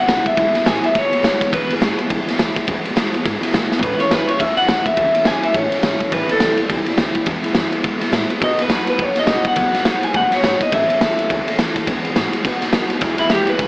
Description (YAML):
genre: rockabilly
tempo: 209 BPM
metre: 4/4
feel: swing 60% on 8ths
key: E major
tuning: A4 = 440 Hz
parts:
  - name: electric guitar through a small old amp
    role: melody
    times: 0.0-13.7 s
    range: E4 to G#5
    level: -17 LUFS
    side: equal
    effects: tape echo
  - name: picked steel-string acoustic guitar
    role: accompaniment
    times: 0.0-13.7 s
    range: E2 to A4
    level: -23 LUFS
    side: equal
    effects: none
  - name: upright bass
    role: bass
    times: 0.1-13.7 s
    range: E1 to D#3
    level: -27 LUFS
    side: equal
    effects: none
  - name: raw garage drum kit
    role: drums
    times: 0.1-13.7 s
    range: kick drum, ride cymbal, snare drum, toms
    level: -18 LUFS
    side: equal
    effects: none
room: moderate studio reverb, RT60 0.8 s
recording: AM radio sound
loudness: -15 LUFS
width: side -24 dB against mid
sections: 0.0-13.0 A section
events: drum fill 3.7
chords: 0.0 E; 3.8 A; 6.1 Am7; 7.3 E; 8.4 B; 10.7 A; 11.9 E; 12.4 B; 13.0 E